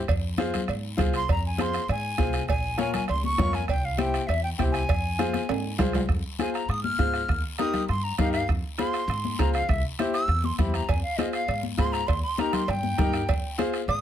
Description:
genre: latin, cumbia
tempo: 200 BPM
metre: 4/4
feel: straight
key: F harmonic minor, F minor from 6.1 s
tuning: A4 = 440 Hz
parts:
  - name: upright bass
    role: bass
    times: 0.0-14.0 s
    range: Bb1 to Ab2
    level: -29 LUFS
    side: equal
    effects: none
  - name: bombo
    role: percussion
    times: 0.1-14.0 s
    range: none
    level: -29 LUFS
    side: right 2 dB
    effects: none
  - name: cowbell and timbales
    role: percussion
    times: 0.1-6.0, 10.9-14.0 s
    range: none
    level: -32 LUFS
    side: right 8 dB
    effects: none
  - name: guiro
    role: percussion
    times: 0.1-14.0 s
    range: none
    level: -41 LUFS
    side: left 6 dB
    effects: none
  - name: clear upright piano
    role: accompaniment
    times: 0.4-13.8 s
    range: Eb4 to Db5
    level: -30 LUFS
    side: left 2 dB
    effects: none
  - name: congas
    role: percussion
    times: 0.4-13.7 s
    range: none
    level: -32 LUFS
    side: left 6 dB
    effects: none
  - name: bright concert flute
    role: melody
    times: 1.2-14.0 s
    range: Eb5 to F6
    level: -29 LUFS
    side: equal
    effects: none
room: light reverb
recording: none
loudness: -24 LUFS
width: side -10 dB against mid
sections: 0.0-6.1 A section; 6.1-14.0 B section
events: drum fill 5.2-6.1; flute solo 6.1-14.0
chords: 0.1 Fm; 2.5 Bbm; 3.7 C; 4.9 Fm; 7.3 Eb; 8.5 Fm; 9.7 C; 10.9 Fm; 12.1 Eb; 13.3 Fm

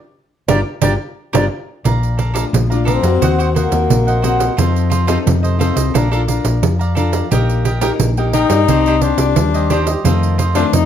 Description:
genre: samba and choro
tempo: 88 BPM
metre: 4/4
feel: straight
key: Bb major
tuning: A4 = 441 Hz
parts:
  - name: hollow concert flute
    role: melody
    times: 0.5-1.5 s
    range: D5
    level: -22 LUFS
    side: right 1 dB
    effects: none
  - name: cavaquinho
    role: accompaniment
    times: 0.5-10.7 s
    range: D4 to Bb5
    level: -22 LUFS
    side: right 4 dB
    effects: none
  - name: nylon-string guitar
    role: accompaniment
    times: 0.5-10.9 s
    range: F2 to D5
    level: -21 LUFS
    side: left 5 dB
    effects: none
  - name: hollow-body short-scale fingered electric bass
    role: bass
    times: 0.5-10.9 s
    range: G1 to G2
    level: -16 LUFS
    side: equal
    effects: none
  - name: pandeiro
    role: percussion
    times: 0.5-10.9 s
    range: none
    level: -19 LUFS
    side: right 6 dB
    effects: none
  - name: breathy tenor saxophone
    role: second line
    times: 2.9-10.9 s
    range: Bb3 to Eb4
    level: -17 LUFS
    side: left 7 dB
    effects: none
room: light reverb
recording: none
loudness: -13 LUFS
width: side -9 dB against mid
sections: 0.0-1.9 A section; 1.9-10.9 B section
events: band accent 0.0-1.9; tenor saxophone solo 1.9-10.9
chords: 0.0 Gm7; 1.9 Bbmaj7; 3.2 Ebm6; 4.6 F7; 6.0 Bbmaj7; 7.3 Eb/Bb; 8.7 Cmadd9; 10.1 F7

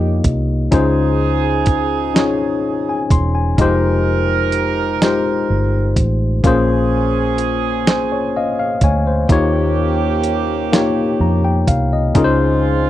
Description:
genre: slow six-eight R&B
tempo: 42 BPM (dotted quarters)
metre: 6/8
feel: straight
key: unclear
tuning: A4 = 440 Hz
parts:
  - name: tine electric piano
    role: accompaniment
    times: 0.0-12.9 s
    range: Ab3 to C6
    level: -17 LUFS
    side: left 4 dB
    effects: none
  - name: clear horn section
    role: stabs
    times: 0.0-12.9 s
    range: Ab3 to Bb4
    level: -22 LUFS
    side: right 10 dB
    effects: slapback echo
  - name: vintage muted fingered electric bass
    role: bass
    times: 0.0-12.9 s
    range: E1 to F2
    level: -18 LUFS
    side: right 1 dB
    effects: none
  - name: dusty soul sampler-style drum kit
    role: drums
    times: 0.2-12.4 s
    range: hi-hat, kick drum, snare drum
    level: -16 LUFS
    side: right 1 dB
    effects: none
room: light reverb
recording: dry, close 1970s-style studio recording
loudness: -14 LUFS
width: side -13 dB against mid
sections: 0.0-12.9 A section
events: tine electric piano fill 7.9-9.3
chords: 0.0 Eb9; 0.7 Dbmaj9; 3.6 Fm9; 6.4 Bbm9; 9.3 Eb9; 12.2 Dbmaj9

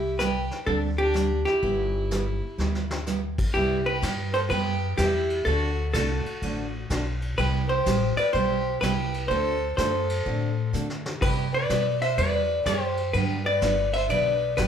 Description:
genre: country, western swing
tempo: 125 BPM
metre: 4/4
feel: swing 66% on 8ths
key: unclear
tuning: A4 = 440 Hz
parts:
  - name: vintage hollow-body jazz guitar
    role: melody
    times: 0.0-14.7 s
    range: G4 to E5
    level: -26 LUFS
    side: left 1 dB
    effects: none
  - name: clear fiddle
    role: second line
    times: 0.0-14.7 s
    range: D4 to C5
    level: -34 LUFS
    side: right 2 dB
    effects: none
  - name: upright bass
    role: bass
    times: 0.0-14.7 s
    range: G1 to D3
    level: -28 LUFS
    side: left 1 dB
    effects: none
  - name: picked steel-string acoustic guitar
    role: accompaniment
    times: 0.2-14.7 s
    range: C3 to A4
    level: -31 LUFS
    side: right 5 dB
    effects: none
  - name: vintage brush drum kit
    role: drums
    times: 0.2-14.7 s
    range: brushed snare drum, crash cymbal, hi-hat, kick drum, ride cymbal, snare drum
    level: -33 LUFS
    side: left 1 dB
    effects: none
room: moderate large studio reverb, RT60 0.8 s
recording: band playing live in one room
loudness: -23 LUFS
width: side -8 dB against mid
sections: 0.0-3.5 A section; 3.5-14.7 B section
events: drum fill 2.6-3.1, 10.7-11.2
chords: 0.0 Cmaj7; 0.7 D7sus4; 1.6 G6; 3.5 Cmaj7; 5.5 D7; 7.4 Cmaj7; 9.3 D7; 11.2 Cmaj7; 13.1 Gmaj7

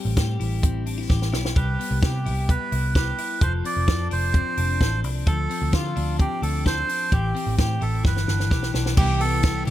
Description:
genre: jangly indie pop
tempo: 129 BPM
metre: 4/4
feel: straight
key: C major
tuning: A4 = 439 Hz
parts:
  - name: twelve-string electric guitar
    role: arpeggios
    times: 0.0-9.7 s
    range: E3 to A4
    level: -30 LUFS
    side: left 8 dB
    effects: tape echo
  - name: vintage muted picked electric bass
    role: bass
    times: 0.1-9.7 s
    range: F1 to D3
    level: -24 LUFS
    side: equal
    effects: none
  - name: compact cocktail drum kit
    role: drums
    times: 0.2-9.7 s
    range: crash cymbal, hi-hat, kick drum, ride cymbal, snare drum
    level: -23 LUFS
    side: equal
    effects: none
  - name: melodica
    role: melody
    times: 1.6-9.6 s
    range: F4 to D5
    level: -27 LUFS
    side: right 4 dB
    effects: tape echo
  - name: picked twelve-string acoustic guitar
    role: accompaniment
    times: 9.0-9.7 s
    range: C3 to E4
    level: -30 LUFS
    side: right 3 dB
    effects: tape echo
room: light reverb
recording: echo-heavy mix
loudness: -20 LUFS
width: side -13 dB against mid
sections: 0.0-9.0 A section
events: drum fill 1.1-1.6, 8.0-9.0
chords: 0.0 Am7; 1.6 Cmaj7; 3.4 F6; 5.3 Dm7; 7.1 Am7; 8.0 G6; 9.0 Cmaj7

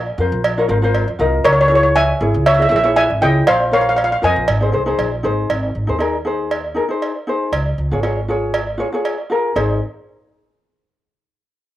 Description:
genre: calypso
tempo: 118 BPM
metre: 4/4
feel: swing 54% on 16ths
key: Ab major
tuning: A4 = 443 Hz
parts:
  - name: steel pan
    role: melody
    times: 0.0-5.2 s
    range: Bb4 to Ab5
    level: -14 LUFS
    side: equal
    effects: cassette tape
  - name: upright bass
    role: bass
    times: 0.0-9.8 s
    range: Ab1 to F2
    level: -20 LUFS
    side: equal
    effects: none
  - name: ukulele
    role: accompaniment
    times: 0.2-9.8 s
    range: Eb4 to Eb5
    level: -20 LUFS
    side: left 2 dB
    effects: none
  - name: cowbell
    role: percussion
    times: 0.4-9.8 s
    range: none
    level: -22 LUFS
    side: right 3 dB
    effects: none
room: moderate studio reverb, RT60 0.5 s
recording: home recording on cassette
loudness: -14 LUFS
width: side -14 dB against mid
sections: 0.0-5.5 A section; 5.5-9.6 B section; 9.6-11.6 C section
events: none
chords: 0.0 Bb7(no3); 1.4 Dbm6; 3.5 Bbsus2; 4.5 Abadd9; 7.5 Db; 9.6 Ab

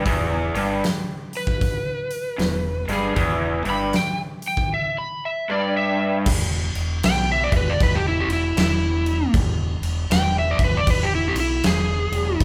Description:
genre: blues rock power trio and southern rock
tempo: 78 BPM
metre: 4/4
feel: swing 63% on 8ths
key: unclear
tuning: A4 = 440 Hz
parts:
  - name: raw garage guitar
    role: riff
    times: 0.0-6.3 s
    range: E2 to G2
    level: -26 LUFS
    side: equal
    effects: overdrive, spring reverb
  - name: growling fingered electric bass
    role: bass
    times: 0.0-12.4 s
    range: E1 to B1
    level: -27 LUFS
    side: equal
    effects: overdrive
  - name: big rock drum kit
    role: drums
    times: 0.1-12.4 s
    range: crash cymbal, hi-hat, kick drum, snare drum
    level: -26 LUFS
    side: equal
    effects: none
  - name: overdriven slide guitar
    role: melody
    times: 1.4-12.4 s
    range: E4 to B5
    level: -26 LUFS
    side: equal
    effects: none
room: light reverb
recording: band playing live in one room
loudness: -22 LUFS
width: mono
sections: 0.0-6.3 A section; 6.3-12.4 B section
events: electric slide guitar solo 6.3-12.4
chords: 0.0 E5

